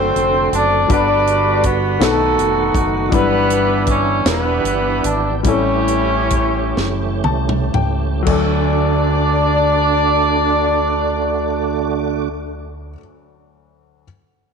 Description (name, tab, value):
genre	slow gospel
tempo	37-54 BPM (dotted quarters)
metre	6/8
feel	straight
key	D major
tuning	A4 = 439 Hz
part	mellow horn section	melody	0.0-12.3 s	A3 to D5	-17 LUFS	equal	none
part	clear upright piano	accompaniment	0.0-14.0 s	D2 to A5	-23 LUFS	left 12 dB	none
part	tonewheel organ	sustained chords	0.0-12.3 s	D3 to G4	-22 LUFS	right 10 dB	slow rotary speaker, overdrive, chorus vibrato
part	deep dub fingered electric bass	bass	0.0-12.9 s	E1 to D2	-22 LUFS	equal	none
part	tight funk drum kit	drums	0.2-8.5 s	crash cymbal, hi-hat, kick drum, snare drum, toms	-21 LUFS	equal	none
room	moderate echo chamber reverb, RT60 2.3 s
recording	1960s-style stereo with parts hard left and right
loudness	-14 LUFS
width	side -6 dB against mid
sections	0.0-8.3 A section; 8.3-11.5 B section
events	slowing down 3.1-8.3; drum fill 6.8-8.3; upright piano fill 6.8-8.3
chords	0.0 D7; 0.9 Gmaj7; 2.0 B7; 3.1 Em7/G; 5.4 A7; 8.3 D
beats	| 0.90 2.01 | 3.12 4.25 | 5.45 6.76 | 8.27 9.90